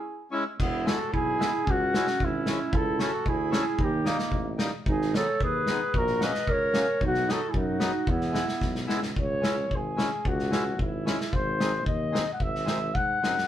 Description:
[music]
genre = alpine folk, alpine dance band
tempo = 112 BPM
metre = 2/4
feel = straight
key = E major, C# minor from 9.2 s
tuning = A4 = 441 Hz
[part]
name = mellow flugelhorn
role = melody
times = 0.0-13.5 s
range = D#4 to F#5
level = -29 LUFS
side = left 1 dB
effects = none
[part]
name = warm clarinet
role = second line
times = 0.0-8.9 s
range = A#3 to B4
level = -30 LUFS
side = right 4 dB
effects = none
[part]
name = accordion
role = accompaniment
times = 0.3-13.4 s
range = F#3 to E4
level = -32 LUFS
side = left 2 dB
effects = none
[part]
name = warm tuba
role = bass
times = 0.6-13.5 s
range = E1 to G#2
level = -33 LUFS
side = equal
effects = none
[part]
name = loose indie drum kit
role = drums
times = 0.6-13.5 s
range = crash cymbal, kick drum, snare drum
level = -30 LUFS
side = equal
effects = none
[sound]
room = moderate studio reverb, RT60 0.8 s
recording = band playing live in one room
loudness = -24 LUFS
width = side -11 dB against mid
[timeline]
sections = 0.6-9.2 A section; 9.2-13.5 B section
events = break 0.0-0.6; drum fill 8.6-9.2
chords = 0.0 C#m; 0.6 E; 1.7 C#m; 2.7 A/C#; 3.8 D#; 4.9 G#m; 5.9 F#/A#; 7.0 B; 8.1 E; 9.2 C#m; 11.3 G#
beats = 0.05 | 0.59 1.13 | 1.67 2.20 | 2.73 3.26 | 3.79 4.32 | 4.86 5.41 | 5.94 6.47 | 7.00 7.54 | 8.06 8.61 | 9.16 9.70 | 10.24 10.79 | 11.32 11.86 | 12.40 12.95

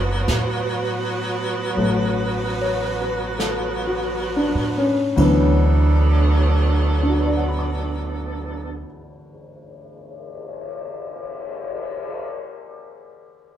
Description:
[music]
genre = jazz ballad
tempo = 32-42 BPM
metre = 4/4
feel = swing 66% on 8ths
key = D major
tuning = A4 = 441 Hz
[part]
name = warm upright piano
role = accompaniment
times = 0.0-13.6 s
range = D2 to D6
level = -22 LUFS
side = left 1 dB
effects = none
[part]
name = bright saxophone section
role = sustained chords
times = 0.0-8.8 s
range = F#3 to B4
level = -25 LUFS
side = right 3 dB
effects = none
[part]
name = upright bass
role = bass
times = 0.0-8.8 s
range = F#1 to A2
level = -22 LUFS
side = equal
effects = none
[part]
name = jazz brush drum kit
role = drums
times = 0.3-12.1 s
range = brushed snare drum, cymbal swell, hi-hat, kick drum, ride cymbal, snare drum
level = -31 LUFS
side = left 1 dB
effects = none
[sound]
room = wet club reverb, RT60 0.9 s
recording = heard from further back in the room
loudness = -18 LUFS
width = side -10 dB against mid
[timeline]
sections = 0.0-5.2 A section; 5.2-12.5 B section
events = slowing down 0.0-5.2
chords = 0.0 D6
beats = 0.28 1.77 3.40 | 5.18 7.03 8.85 10.68

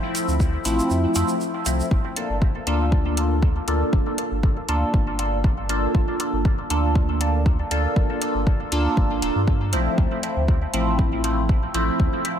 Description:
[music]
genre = dub techno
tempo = 119 BPM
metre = 4/4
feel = straight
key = G minor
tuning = A4 = 441 Hz
[part]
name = resonant sweep polysynth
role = stabs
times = 0.0-12.4 s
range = F3 to A4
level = -23 LUFS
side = equal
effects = chorus, phaser, sidechain pumping, dub echo
[part]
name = electronic hi-hat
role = drums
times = 0.1-12.4 s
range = none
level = -29 LUFS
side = left 1 dB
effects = overdrive
[part]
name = tube shaker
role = percussion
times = 0.2-1.9 s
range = none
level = -32 LUFS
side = right 4 dB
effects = none
[part]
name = pure sine sub bass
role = bass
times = 0.3-12.1 s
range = D1 to G2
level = -24 LUFS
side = equal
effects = sidechain pumping
[part]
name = electronic kick drum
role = drums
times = 0.4-12.1 s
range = none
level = -21 LUFS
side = equal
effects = overdrive
[sound]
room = digital ambience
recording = none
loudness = -19 LUFS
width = side -9 dB against mid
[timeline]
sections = 0.0-1.9 A section; 1.9-12.4 A section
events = kick drops out 0.9-1.9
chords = 0.0 Dm7; 1.9 Gm7; 10.0 Dm7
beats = 0.40 0.90 1.41 | 1.91 2.42 2.92 3.42 | 3.93 4.43 4.94 5.44 | 5.95 6.45 6.95 7.46 | 7.96 8.47 8.97 9.47 | 9.98 10.48 10.99 11.49 | 12.00

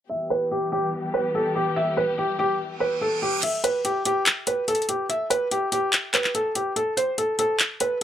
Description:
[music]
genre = hip hop, trap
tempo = 144 BPM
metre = 4/4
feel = half-time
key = E minor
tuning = A4 = 437 Hz
[part]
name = felt-muted upright piano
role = melody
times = 0.1-8.0 s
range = G4 to E5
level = -23 LUFS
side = equal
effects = low-pass filter, digital delay
[part]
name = warm symphonic string section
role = sustained chords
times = 0.1-3.4 s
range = E3 to G4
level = -31 LUFS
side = left 2 dB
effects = low-pass filter
[part]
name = reverse cymbal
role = sound effects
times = 2.8-3.4 s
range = none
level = -29 LUFS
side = right 6 dB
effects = none
[part]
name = trap drum kit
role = drums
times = 3.4-7.9 s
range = crash cymbal, handclaps, hi-hat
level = -23 LUFS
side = left 1 dB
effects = none
[sound]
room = moderate booth ambience, RT60 0.2 s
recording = none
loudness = -21 LUFS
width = side -10 dB against mid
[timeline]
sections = 0.1-3.4 A section; 3.4-8.0 B section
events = filter sweep 0.1-3.4; reverse cymbal 2.8-3.4; kick muted 3.4-8.0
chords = 0.1 Em; 3.4 N.C.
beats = | 0.10 0.51 0.93 1.35 | 1.76 2.18 2.60 3.01 | 3.43 3.85 4.26 4.68 | 5.10 5.51 5.93 6.35 | 6.76 7.18 7.60

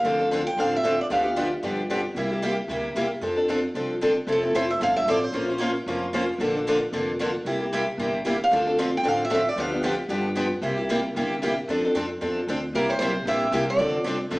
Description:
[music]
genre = acoustic string swing (jazz manouche)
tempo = 227 BPM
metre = 4/4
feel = swing 56% on 8ths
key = F major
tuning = A4 = 444 Hz
[part]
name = picked steel-string acoustic guitar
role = melody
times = 0.0-1.5, 4.3-5.6, 8.4-10.0, 12.8-14.2 s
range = A4 to G5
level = -24 LUFS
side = right 1 dB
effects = none
[part]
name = picked steel-string acoustic guitar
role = accompaniment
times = 0.0-14.4 s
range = C3 to C5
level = -26 LUFS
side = left 1 dB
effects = none
[part]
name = picked steel-string acoustic guitar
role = accompaniment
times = 0.0-14.4 s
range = C3 to C5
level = -28 LUFS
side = right 1 dB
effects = none
[part]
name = upright bass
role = bass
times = 0.0-14.4 s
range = F1 to G2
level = -34 LUFS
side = equal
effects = none
[sound]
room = wet large studio reverb, RT60 0.9 s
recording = band playing live in one room, small speaker sound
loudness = -22 LUFS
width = side -22 dB against mid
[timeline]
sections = 0.0-4.3 A section; 4.3-12.7 A section; 12.7-14.4 B section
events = none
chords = 0.0 Dm7; 1.1 G7/D; 2.2 C7; 3.2 F6; 4.3 Fmaj7; 5.3 Bbmadd9; 6.4 Bbmaj7; 7.5 C7; 8.5 Dm7; 9.6 G7/D; 10.6 C7; 11.7 F6; 12.7 C7; 13.8 Dm7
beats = | 0.04 0.31 0.57 0.84 | 1.10 1.36 1.63 1.90 | 2.16 2.42 2.69 2.96 | 3.22 3.48 3.75 4.01 | 4.28 4.54 4.81 5.07 | 5.34 5.60 5.87 6.13 | 6.39 6.66 6.92 7.19 | 7.45 7.72 7.98 8.24 | 8.51 8.77 9.04 9.30 | 9.57 9.83 10.09 10.36 | 10.62 10.89 11.15 11.41 | 11.68 11.94 12.21 12.47 | 12.74 13.00 13.26 13.53 | 13.79 14.06 14.32

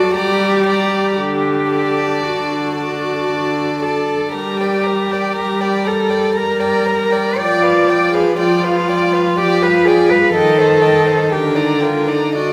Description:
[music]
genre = classical, slow romantic movement for string quartet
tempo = 56-62 BPM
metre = 3/4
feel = rubato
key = G minor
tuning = A4 = 440 Hz
[part]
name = warm violin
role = melody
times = 0.0-12.5 s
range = Eb5 to Bb5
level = -28 LUFS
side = equal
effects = none
[part]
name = warm violin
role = second line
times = 0.0-12.5 s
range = Bb4 to Eb5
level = -24 LUFS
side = equal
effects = none
[part]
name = warm viola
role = accompaniment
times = 0.0-12.5 s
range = D3 to G3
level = -20 LUFS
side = equal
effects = none
[part]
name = dark cello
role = bass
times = 0.0-12.5 s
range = Eb4 to D5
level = -19 LUFS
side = equal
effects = none
[sound]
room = wet recital hall reverb, RT60 1.8 s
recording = recorded in a church or concert hall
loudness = -16 LUFS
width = mono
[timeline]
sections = 0.0-12.5 A section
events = none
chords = 0.1 Gm; 1.2 D; 4.3 Gm; 7.4 G7/F; 10.3 Cm/Eb; 11.3 Gm/D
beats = 0.14 | 1.18 2.23 3.29 | 4.34 5.37 6.36 | 7.38 8.39 9.38 | 10.35 11.32 12.35

